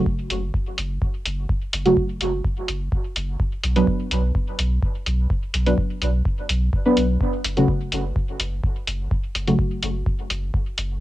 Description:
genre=dub techno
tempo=126 BPM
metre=4/4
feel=straight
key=unclear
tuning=A4 = 440 Hz
part: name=deep mellow chord stab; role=stabs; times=0.0-9.5 s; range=C#3 to B4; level=-22 LUFS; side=right 1 dB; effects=chorus, phaser, sidechain pumping, cassette tape, dub echo
part: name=soft dub sub bass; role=bass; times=0.0-11.0 s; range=F#1 to B1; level=-23 LUFS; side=equal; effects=sidechain pumping
part: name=electronic kick drum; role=drums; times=0.1-10.6 s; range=none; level=-24 LUFS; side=equal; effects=studio ambience, cassette tape
part: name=electronic hi-hat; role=drums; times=0.3-10.9 s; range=none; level=-25 LUFS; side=left 1 dB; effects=studio ambience, cassette tape
room=little or no reverb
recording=home recording on cassette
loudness=-20 LUFS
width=side -15 dB against mid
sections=0.0-11.0 A section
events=none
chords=0.0 N.C.; 3.4 Bm; 7.2 N.C.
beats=0.06 0.54 1.02 | 1.49 1.97 2.44 2.92 | 3.40 3.87 4.35 4.83 | 5.30 5.78 6.25 6.73 | 7.21 7.68 8.16 8.63 | 9.11 9.59 10.06 10.54

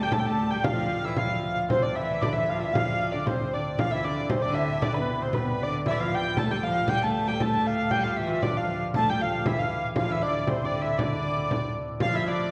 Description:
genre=medieval dance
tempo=116 BPM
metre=2/4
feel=straight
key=D dorian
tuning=A4 = 440 Hz
part: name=dark hurdy-gurdy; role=melody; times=0.0-12.5 s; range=B4 to A5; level=-30 LUFS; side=equal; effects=none
part: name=hammered dulcimer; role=second line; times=0.0-12.5 s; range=B3 to A4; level=-37 LUFS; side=equal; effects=none
part: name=rich viola da gamba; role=second line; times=0.0-12.5 s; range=B2 to A3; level=-34 LUFS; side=equal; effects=none
part: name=pipe organ, principal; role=drone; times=0.0-12.5 s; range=D2 to A2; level=-40 LUFS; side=equal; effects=none
part: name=frame drum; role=percussion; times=0.1-12.2 s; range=none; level=-33 LUFS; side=equal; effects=none
room=wet recital hall reverb, RT60 1.6 s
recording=heard from further back in the room, nothing above 10.4 kHz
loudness=-26 LUFS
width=mono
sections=0.0-3.8 A section; 3.8-12.0 B section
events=speeding up 0.0-12.5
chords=none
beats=0.13 | 0.66 1.18 | 1.70 2.22 | 2.74 3.26 | 3.78 4.30 | 4.82 5.34 | 5.86 6.37 | 6.89 7.40 | 7.92 8.43 | 8.95 9.46 | 9.97 10.48 | 10.99 11.50 | 12.01

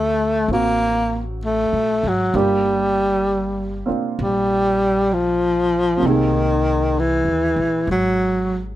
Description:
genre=jazz ballad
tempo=65 BPM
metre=4/4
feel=swing 68% on 8ths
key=unclear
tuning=A4 = 440 Hz
part: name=breathy tenor saxophone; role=melody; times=0.0-8.6 s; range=D#3 to Bb3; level=-18 LUFS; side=equal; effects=none
part: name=warm upright piano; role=accompaniment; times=0.0-8.8 s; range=C3 to A4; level=-26 LUFS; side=right 5 dB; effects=none
part: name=upright bass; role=bass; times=0.0-8.8 s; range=G1 to D#2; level=-26 LUFS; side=left 1 dB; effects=none
room=little or no reverb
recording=none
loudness=-17 LUFS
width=side -14 dB against mid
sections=0.0-8.8 A section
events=none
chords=0.0 D7b13; 2.3 Gm7; 6.0 C7alt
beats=0.49 1.41 | 2.33 3.25 4.18 5.10 | 6.03 6.95 7.87

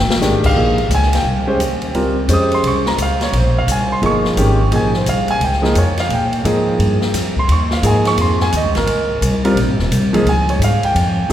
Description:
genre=modal jazz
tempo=173 BPM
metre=4/4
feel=swing 64% on 8ths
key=Bb dorian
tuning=A4 = 442 Hz
part: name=warm grand piano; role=accompaniment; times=0.0-11.3 s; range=Eb3 to Eb6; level=-16 LUFS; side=right 1 dB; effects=none
part: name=upright bass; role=bass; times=0.0-11.3 s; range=Eb1 to Bb2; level=-17 LUFS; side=equal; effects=none
part: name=open jazz drum kit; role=drums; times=0.1-11.3 s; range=crash cymbal, hi-hat, kick drum, ride cymbal, snare drum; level=-23 LUFS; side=left 1 dB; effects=none
room=wet church reverb, RT60 3.8 s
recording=recorded in a church or concert hall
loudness=-13 LUFS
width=side -11 dB against mid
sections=0.6-11.3 A section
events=drum fill 0.0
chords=0.0 Fm9; 0.6 Bbm9; 6.1 Dbsus2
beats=0.21 | 0.56 0.91 1.25 1.60 | 1.95 2.29 2.64 2.99 | 3.33 3.68 4.03 4.37 | 4.72 5.07 5.41 5.76 | 6.11 6.45 6.80 7.14 | 7.49 7.84 8.18 8.53 | 8.88 9.22 9.57 9.91 | 10.26 10.61 10.95 11.30

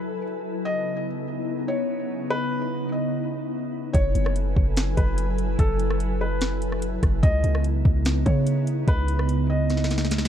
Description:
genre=hip hop, atmospheric cloud-rap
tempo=146 BPM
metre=4/4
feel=half-time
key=F# dorian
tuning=A4 = 440 Hz
part: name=felt-muted upright piano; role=melody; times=0.0-10.3 s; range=A4 to D#5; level=-31 LUFS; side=left 1 dB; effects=ping-pong delay
part: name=glassy FM pad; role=sustained chords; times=0.0-10.3 s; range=C#3 to G#5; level=-27 LUFS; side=equal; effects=ensemble chorus, built-in reverb, sidechain pumping
part: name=warm 808-style bass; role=bass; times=3.9-10.3 s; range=F#1 to C#3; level=-24 LUFS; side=equal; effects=none
part: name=smooth R&B drum kit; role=drums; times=3.9-10.3 s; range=hi-hat, kick drum, rim click, snare drum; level=-23 LUFS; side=equal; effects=none
room=little or no reverb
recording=dark, warm production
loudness=-21 LUFS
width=side -10 dB against mid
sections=0.0-10.3 A section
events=drum fill 9.7-10.3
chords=0.0 F#m11; 0.7 C#m9; 3.9 F#m11; 7.2 C#m9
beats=0.25 | 0.66 1.07 1.48 1.89 | 2.30 2.71 3.12 3.53 | 3.94 4.36 4.77 5.18 | 5.59 6.00 6.41 6.82 | 7.23 7.64 8.05 8.46 | 8.88 9.29 9.70 10.11

